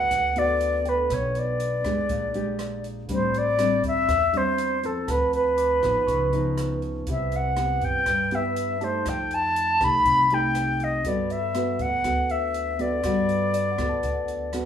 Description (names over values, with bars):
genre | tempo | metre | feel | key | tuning
bossa nova | 121 BPM | 4/4 | straight | G major | A4 = 440 Hz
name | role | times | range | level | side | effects
concert flute | melody | 0.0-14.5 s | A4 to B5 | -23 LUFS | left 1 dB | none
nylon-string guitar | accompaniment | 0.0-14.7 s | G2 to A4 | -29 LUFS | equal | none
tine electric piano | accompaniment | 0.0-14.7 s | D5 to D6 | -41 LUFS | equal | none
upright bass | bass | 0.1-14.7 s | A1 to G2 | -31 LUFS | right 1 dB | none
open jazz drum kit | drums | 0.1-14.6 s | hi-hat, kick drum, rim click | -36 LUFS | equal | none
room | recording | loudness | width
moderate studio reverb, RT60 0.6 s | rough home demo mix, small room reverb | -21 LUFS | side -9 dB against mid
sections
0.0-14.7 A section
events
none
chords
0.0 Gmaj9; 1.1 Bm7; 2.1 Bb6; 3.1 Am7; 5.1 Dm9; 6.1 C#9; 7.1 Cmaj7; 9.1 F9; 11.1 Gmaj9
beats
0.11 0.61 | 1.10 1.60 2.10 2.59 | 3.09 3.59 4.08 4.58 | 5.08 5.58 6.08 6.57 | 7.07 7.57 8.06 8.56 | 9.06 9.56 10.05 10.55 | 11.05 11.55 12.04 12.54 | 13.04 13.54 14.04 14.53